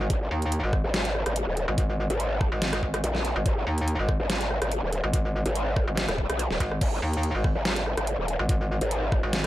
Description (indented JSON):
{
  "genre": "heavy wobble dubstep",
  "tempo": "143 BPM",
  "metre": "4/4",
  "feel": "half-time",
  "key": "G# minor",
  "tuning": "A4 = 440 Hz",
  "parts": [
    { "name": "metallic wobble bass", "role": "bass", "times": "0.0-9.5 s", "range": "G#1 to D#2", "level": "-26 LUFS", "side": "equal", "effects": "chorus, overdrive" },
    { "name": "growl bass", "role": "bass", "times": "0.1-9.2 s", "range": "D#1 to B1", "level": "-26 LUFS", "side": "equal", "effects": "chorus, overdrive" },
    { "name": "dubstep drum kit", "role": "drums", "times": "0.1-9.5 s", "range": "crash cymbal, hi-hat, rim click, snare drum", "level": "-30 LUFS", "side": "equal", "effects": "none" },
    { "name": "electronic kick drum", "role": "drums", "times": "0.1-9.2 s", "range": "none", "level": "-26 LUFS", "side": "equal", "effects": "none" }
  ],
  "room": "little or no reverb",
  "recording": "none",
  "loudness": "-24 LUFS",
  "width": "side -15 dB against mid",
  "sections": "0.0-9.5 A section",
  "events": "none",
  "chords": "0.0 G#5"
}